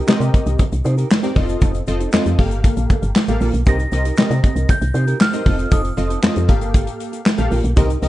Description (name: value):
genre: early-eighties boogie funk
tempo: 117 BPM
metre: 4/4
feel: straight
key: C dorian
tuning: A4 = 439 Hz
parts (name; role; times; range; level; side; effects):
- mellow electric guitar; riff; 0.0-8.1 s; Bb3 to C5; -27 LUFS; right 4 dB; wide subtle chorus
- funky polysynth comp; accompaniment; 0.1-8.1 s; Bb3 to F5; -24 LUFS; left 1 dB; chorus
- woody FM bass; bass; 0.1-8.1 s; F1 to C3; -19 LUFS; equal; none
- modern studio drum kit; drums; 0.1-8.1 s; handclaps, hi-hat, kick drum, snare drum; -16 LUFS; equal; none
- egg shaker; percussion; 0.1-8.1 s; none; -44 LUFS; left 14 dB; none
- glassy synth bell; melody; 3.7-6.5 s; Eb6 to Bb6; -26 LUFS; right 1 dB; chorus, slapback echo
room: light reverb, small room ambience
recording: dark, warm production, nothing above 10.3 kHz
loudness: -15 LUFS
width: side -15 dB against mid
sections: 0.0-8.1 A section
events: none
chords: 0.0 Cm7; 1.4 F7; 2.4 Gm9; 3.7 Cm7; 5.5 F7; 6.5 Gm9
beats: 0.08 0.59 1.10 | 1.62 2.13 2.64 3.16 | 3.67 4.18 4.70 5.21 | 5.72 6.23 6.75 7.26 | 7.77